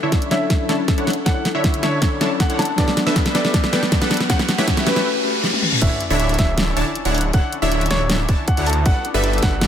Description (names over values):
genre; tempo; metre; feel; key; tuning
future bass; 158 BPM; 4/4; half-time; D major; A4 = 440 Hz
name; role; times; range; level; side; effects
glassy digital keys; accompaniment; 0.0-5.8 s; F#3 to C#5; -25 LUFS; left 4 dB; chorus, sidechain pumping, dub echo
supersaw stab; riff; 0.0-9.7 s; D3 to A5; -22 LUFS; right 1 dB; sidechain pumping, low-pass filter
riser, reverse cymbal and sub drop; sound effects; 2.1-7.3 s; none; -27 LUFS; equal; none
electronic kick drum; drums; 0.1-9.5 s; none; -19 LUFS; equal; none
pop drum kit; drums; 0.1-9.7 s; crash cymbal, hi-hat, snare drum, toms; -22 LUFS; equal; none
bright concert grand piano; melody; 0.3-9.6 s; B4 to A5; -27 LUFS; equal; vintage 12-bit sampler grit, sidechain pumping, digital delay
concert harp; arpeggios; 5.8-9.7 s; B3 to F#4; -29 LUFS; left 4 dB; sidechain pumping, dub echo
wide detuned saw bass; bass; 5.8-9.7 s; D1 to D2; -21 LUFS; equal; chorus, sidechain pumping
room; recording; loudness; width
light reverb; none; -16 LUFS; side -9 dB against mid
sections
0.0-5.8 A section; 5.8-9.7 B section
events
build-up 0.0-5.8; drum fill 0.0-5.1, 5.4-5.8; filter sweep on supersaw synth 0.0-5.8; riser 2.1-5.8; reverse cymbal 5.1-5.8; drop 5.8-9.7; impact 5.8-7.3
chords
0.0 Dmaj9; 2.8 Gmaj7; 4.3 A13; 5.8 Dmaj9; 8.9 Gmaj7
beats
0.12 0.50 0.88 | 1.26 1.64 2.02 2.40 | 2.78 3.16 3.54 3.92 | 4.30 4.68 5.06 5.44 | 5.82 6.20 6.58 6.96 | 7.34 7.72 8.10 8.48 | 8.86 9.24 9.62